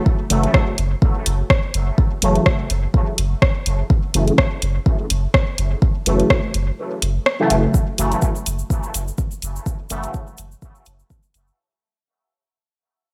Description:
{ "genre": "dub techno", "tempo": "125 BPM", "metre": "4/4", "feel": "swing 56% on 16ths", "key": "F# minor", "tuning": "A4 = 440 Hz", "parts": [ { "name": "electronic kick drum", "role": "drums", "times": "0.1-11.2 s", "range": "none", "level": "-20 LUFS", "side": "equal", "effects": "studio reverb" }, { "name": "resonant sweep polysynth", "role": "stabs", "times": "0.3-10.2 s", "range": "C#3 to A3", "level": "-25 LUFS", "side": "equal", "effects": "chorus, phaser, sidechain pumping, dub echo" }, { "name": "warm sub bass", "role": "bass", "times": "0.3-11.5 s", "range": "F#1", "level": "-23 LUFS", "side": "equal", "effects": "sidechain pumping" }, { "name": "deep house drum kit", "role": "drums", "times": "0.3-11.4 s", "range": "hi-hat, rim click", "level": "-24 LUFS", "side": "equal", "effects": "overdrive, studio reverb, gated reverb, dub echo" }, { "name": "cabasa", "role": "percussion", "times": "7.7-11.6 s", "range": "none", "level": "-34 LUFS", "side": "equal", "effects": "none" } ], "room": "light reverb", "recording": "bright 1980s-style digital production", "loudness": "-19 LUFS", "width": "mono", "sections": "0.0-7.7 A section; 7.7-11.6 B section", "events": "kick drops out 6.8-7.7; fade-out 7.7-11.6", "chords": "0.0 F#m7; 7.7 N.C.", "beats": "| 0.06 0.54 1.02 1.50 | 1.98 2.46 2.94 3.42 | 3.90 4.38 4.86 5.34 | 5.82 6.30 6.78 7.26 | 7.74 8.22 8.70 9.18 | 9.66 10.14 10.62 11.10" }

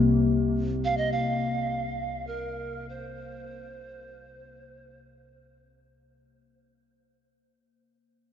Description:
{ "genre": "world meditative, free-time meditation music", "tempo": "free time", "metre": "none", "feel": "none", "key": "unclear", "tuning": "A4 = 440 Hz", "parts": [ { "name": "warbly tape-like pad", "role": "drone", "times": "0.0-6.1 s", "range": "C2 to C3", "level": "-29 LUFS", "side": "equal", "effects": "chorus, built-in reverb" }, { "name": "quartz singing bowl", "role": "texture", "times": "0.0-6.5 s", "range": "Bb3", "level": "-28 LUFS", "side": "left 5 dB", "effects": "none" }, { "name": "polished pan flute", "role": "melody", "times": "0.8-5.7 s", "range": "Bb4 to F5", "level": "-32 LUFS", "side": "right 4 dB", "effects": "none" } ], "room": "moderate huge ambient reverb, RT60 9.0 s", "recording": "dark, warm production, nothing above 7.5 kHz", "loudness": "-26 LUFS", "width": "side -9 dB against mid", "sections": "0.0-6.0 A section", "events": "fade-out 0.0-6.0", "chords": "none", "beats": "free time" }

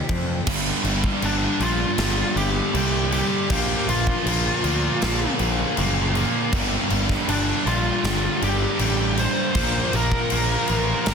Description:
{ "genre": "quiet-loud alternative rock", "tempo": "79 BPM", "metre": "4/4", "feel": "straight", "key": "G minor", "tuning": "A4 = 441 Hz", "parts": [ { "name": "smooth overdriven lead guitar", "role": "melody", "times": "0.0-11.1 s", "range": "D4 to C5", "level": "-26 LUFS", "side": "equal", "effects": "none" }, { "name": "electric guitar through a small old amp", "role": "arpeggios", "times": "0.0-0.5 s", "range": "F3 to F4", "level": "-35 LUFS", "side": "right 3 dB", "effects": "none" }, { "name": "distorted electric guitar", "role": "riff", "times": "0.0-11.1 s", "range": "F2 to Bb3", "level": "-28 LUFS", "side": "left 14 dB", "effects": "overdrive" }, { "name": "fuzz picked electric bass", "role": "bass", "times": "0.1-11.1 s", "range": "F#1 to F2", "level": "-26 LUFS", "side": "equal", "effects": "overdrive" }, { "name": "huge arena drum kit", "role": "drums", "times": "0.1-11.1 s", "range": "crash cymbal, kick drum, ride cymbal, snare drum", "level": "-26 LUFS", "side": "left 1 dB", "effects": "soft clipping on kick" }, { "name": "heavy high-gain guitar", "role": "riff", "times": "0.5-11.1 s", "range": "G2 to Bb3", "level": "-27 LUFS", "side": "right 14 dB", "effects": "distortion" }, { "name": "sludgy distorted guitar", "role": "riff", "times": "0.5-11.1 s", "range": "G2 to D4", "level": "-29 LUFS", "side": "right 2 dB", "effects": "overdrive" }, { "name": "rich studio string section", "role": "sustained chords", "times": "6.5-11.1 s", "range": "F4 to Bb5", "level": "-38 LUFS", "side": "left 2 dB", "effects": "none" } ], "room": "studio reverb", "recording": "dense, heavily limited modern master", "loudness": "-19 LUFS", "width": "side -6 dB against mid", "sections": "0.5-11.1 A section", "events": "none", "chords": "0.5 Gm; 3.5 Bb; 6.5 Gm; 9.6 Bb", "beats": "| 0.48 1.24 2.00 2.75 | 3.51 4.26 5.02 5.78 | 6.53 7.29 8.04 8.80 | 9.55 10.31 11.07" }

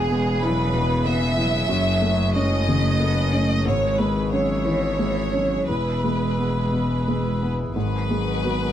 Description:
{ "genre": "neoclassical piano and strings", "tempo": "86-95 BPM", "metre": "3/4", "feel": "rubato", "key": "unclear", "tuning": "A4 = 440 Hz", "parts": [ { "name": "clear chamber violin section", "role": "melody", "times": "0.0-8.7 s", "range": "G#4 to E5", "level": "-25 LUFS", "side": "equal", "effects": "plate reverb" }, { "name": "clear cello", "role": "second line", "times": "0.0-8.7 s", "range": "E3 to B3", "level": "-30 LUFS", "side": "right 4 dB", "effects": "none" }, { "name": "felt-muted upright piano", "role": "accompaniment", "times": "0.0-8.7 s", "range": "E2 to F#4", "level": "-24 LUFS", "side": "left 1 dB", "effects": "none" }, { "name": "hand-pumped harmonium", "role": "sustained chords", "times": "0.0-8.7 s", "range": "C#3 to C#5", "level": "-34 LUFS", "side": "equal", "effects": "none" }, { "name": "rich double bass", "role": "bass", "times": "0.0-8.7 s", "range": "E1 to G#1", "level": "-25 LUFS", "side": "equal", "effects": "none" } ], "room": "moderate studio reverb, RT60 0.6 s", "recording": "heard from further back in the room", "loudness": "-19 LUFS", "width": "side -10 dB against mid", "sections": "0.0-7.8 A section", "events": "none", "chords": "0.0 E; 1.7 F#madd9; 3.6 C#m/G#; 5.7 E; 7.8 G#m7", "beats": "0.42 1.05 | 1.69 2.34 2.99 | 3.65 4.31 4.98 | 5.67 6.37 7.06 | 7.75 8.43" }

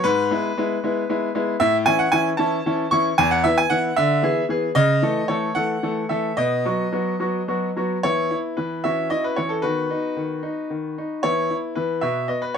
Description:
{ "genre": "classical-period piano sonatina", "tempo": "75 BPM (dotted quarters)", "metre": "6/8", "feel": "straight", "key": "E major", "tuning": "A4 = 438 Hz", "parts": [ { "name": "bright baby grand piano", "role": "solo", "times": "0.0-12.6 s", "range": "E2 to C#6", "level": "-19 LUFS", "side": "equal", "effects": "none" } ], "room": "light reverb", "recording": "dark, warm production", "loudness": "-19 LUFS", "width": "side -7 dB against mid", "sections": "0.0-8.0 A section; 8.0-12.6 A section", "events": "none", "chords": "0.0 E/G#; 1.6 A; 3.2 E5; 4.0 E7/D; 4.7 A/C#; 6.4 B; 8.0 E5; 8.8 F#5/E; 9.6 B/D#; 11.2 E5; 12.0 B5", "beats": "| 0.04 0.82 | 1.61 2.39 | 3.17 3.96 | 4.75 5.56 | 6.38 7.21 | 8.04 8.84 | 9.64 10.43 | 11.23 12.02" }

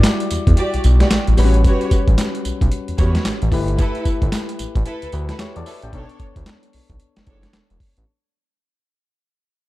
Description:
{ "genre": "R&B, new jack swing", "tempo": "112 BPM", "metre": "4/4", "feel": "swing 62% on 16ths", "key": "unclear", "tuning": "A4 = 442 Hz", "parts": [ { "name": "soft electric-piano-like synth keys", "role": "accompaniment", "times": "0.0-8.1 s", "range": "G3 to G5", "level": "-26 LUFS", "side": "left 5 dB", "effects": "chorus" }, { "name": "boom bap sampler-style drum kit", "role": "drums", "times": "0.0-8.1 s", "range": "handclaps, hi-hat, kick drum, snare drum, tambourine", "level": "-18 LUFS", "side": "equal", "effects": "none" }, { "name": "smooth synth bass", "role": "bass", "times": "0.3-8.0 s", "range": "E1 to E2", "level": "-17 LUFS", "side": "equal", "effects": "none" }, { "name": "warm studio string section", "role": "stabs", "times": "0.6-7.5 s", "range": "D4 to D5", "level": "-27 LUFS", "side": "right 2 dB", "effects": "digital delay" } ], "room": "digital ambience", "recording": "dark, warm production", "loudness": "-15 LUFS", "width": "side -18 dB against mid", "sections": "0.0-8.1 A section", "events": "fade-out 0.0-8.1", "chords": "0.0 Em9; 1.4 A13; 3.5 G69; 5.9 Bm9", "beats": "0.04 0.57 1.11 | 1.64 2.18 2.71 3.25 | 3.79 4.32 4.86 5.39 | 5.93 6.46 7.00 7.54" }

